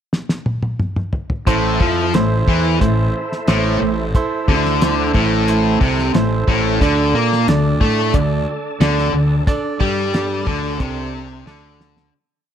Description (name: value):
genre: classic rock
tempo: 90 BPM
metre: 4/4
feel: straight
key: A minor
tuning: A4 = 437 Hz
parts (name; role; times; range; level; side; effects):
- cloth-damped thuddy drum kit; drums; 0.1-12.1 s; hi-hat, kick drum, snare drum, toms; -18 LUFS; equal; none
- bright grand piano; accompaniment; 1.5-12.0 s; D4 to D5; -24 LUFS; right 4 dB; none
- tonewheel organ; sustained chords; 1.5-12.1 s; D4 to A5; -29 LUFS; equal; none
- biting overdriven guitar; riff; 1.5-12.1 s; A2 to Bb3; -21 LUFS; right 8 dB; none
- overdriven electric guitar; riff; 1.5-12.1 s; A2 to Bb3; -21 LUFS; left 10 dB; none
- fuzz fingered electric bass; bass; 1.5-12.1 s; A1 to Bb2; -21 LUFS; equal; overdrive
room: light reverb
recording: none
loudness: -15 LUFS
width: side -9 dB against mid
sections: 0.0-1.5 pickup bar; 1.5-12.1 riff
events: drum fill 0.1-1.5, 11.5-12.1; fade-out 9.5-12.1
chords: 0.0 N.C.; 1.5 Am; 6.8 D5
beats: 0.13 0.80 | 1.47 2.14 2.81 3.48 | 4.14 4.81 5.48 6.14 | 6.81 7.47 8.14 8.80 | 9.47 10.13 10.80 11.47